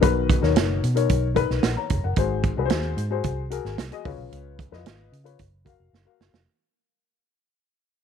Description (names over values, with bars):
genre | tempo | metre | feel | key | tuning
uptempo 1960s-style soul | 112 BPM | 4/4 | straight | F# major | A4 = 441 Hz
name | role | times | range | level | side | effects
dark upright piano | accompaniment | 0.0-6.4 s | G#2 to A#5 | -26 LUFS | left 13 dB | none
vintage muted fingered electric bass | bass | 0.0-6.4 s | E#1 to C#3 | -26 LUFS | right 1 dB | none
natural country drum kit | drums | 0.0-6.5 s | hi-hat, kick drum, snare drum | -24 LUFS | right 4 dB | none
room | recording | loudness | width
studio ambience | 1960s-style stereo | -21 LUFS | side -8 dB against mid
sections
0.0-6.5 A section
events
fade-out 0.0-6.5; drum fill 5.9-6.5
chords
0.0 Bmaj7; 2.2 G#7; 4.0 C#7; 5.4 F#maj7